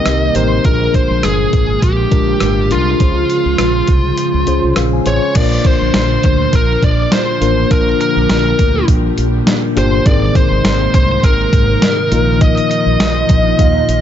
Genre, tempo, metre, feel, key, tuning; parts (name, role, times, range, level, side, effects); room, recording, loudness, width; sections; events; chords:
1980s-style pop; 102 BPM; 4/4; swing 55% on 16ths; A4 = 441 Hz
bluesy overdriven lead guitar; melody; 0.0-14.0 s; F4 to Eb5; -17 LUFS; equal; distortion
mellow tine electric piano; accompaniment; 0.0-14.0 s; Ab2 to C6; -18 LUFS; left 4 dB; medium stereo tremolo
string machine, cellos; sustained chords; 0.0-14.0 s; Bb2 to C5; -20 LUFS; equal; ensemble chorus
mellow fretless electric bass; bass; 0.1-14.0 s; G1 to Eb2; -17 LUFS; equal; wide subtle chorus
clean 12-bit digital drum machine; drums; 0.1-14.0 s; crash cymbal, hi-hat, kick drum, rim click, snare drum; -14 LUFS; equal; overdrive
light reverb; dark, warm production, nothing above 7.7 kHz; -10 LUFS; side -10 dB against mid
0.0-5.4 A section; 5.4-14.0 B section
tine electric piano fill 4.5-5.4, 13.0-14.0
0.0 Cm7; 0.7 Bb7; 3.0 Dbmaj7; 5.4 Bb; 10.1 Abadd9; 12.1 Bbsus4